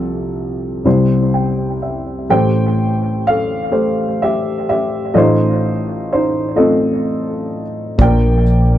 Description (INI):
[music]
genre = acoustic folk-pop ballad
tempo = 42 BPM (dotted quarters)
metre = 6/8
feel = straight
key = F major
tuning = A4 = 440 Hz
[part]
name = dark upright piano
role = melody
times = 0.0-8.8 s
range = A1 to G5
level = -14 LUFS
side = equal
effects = tape echo
[part]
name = mellow fretless electric bass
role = bass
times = 8.0-8.8 s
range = Bb1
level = -12 LUFS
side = equal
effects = none
[part]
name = vintage brush drum kit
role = drums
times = 8.0-8.7 s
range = hi-hat, kick drum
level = -13 LUFS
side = equal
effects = none
[sound]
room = light reverb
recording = dry, close 1970s-style studio recording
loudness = -14 LUFS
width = side -12 dB against mid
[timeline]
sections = 0.0-2.3 A section; 2.3-8.8 B section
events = upright piano fill 0.9-2.3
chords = 0.0 F/C; 0.9 C; 2.3 Am7; 5.1 F7/A; 8.0 Bb